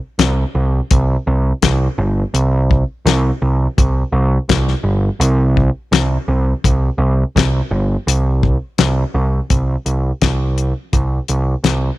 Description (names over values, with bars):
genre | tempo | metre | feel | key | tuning
classic rock | 84 BPM | 4/4 | straight | unclear | A4 = 440 Hz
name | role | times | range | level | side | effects
growling picked electric bass | bass | 0.2-11.9 s | G1 to C2 | -15 LUFS | right 1 dB | overdrive
damped 70s drum kit | drums | 0.2-11.8 s | hi-hat, kick drum, snare drum | -16 LUFS | left 2 dB | none
room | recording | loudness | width
little or no reverb | 1960s-style stereo, faint mains hum | -14 LUFS | side -17 dB against mid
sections
0.0-9.5 A section; 9.5-12.0 B section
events
none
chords
none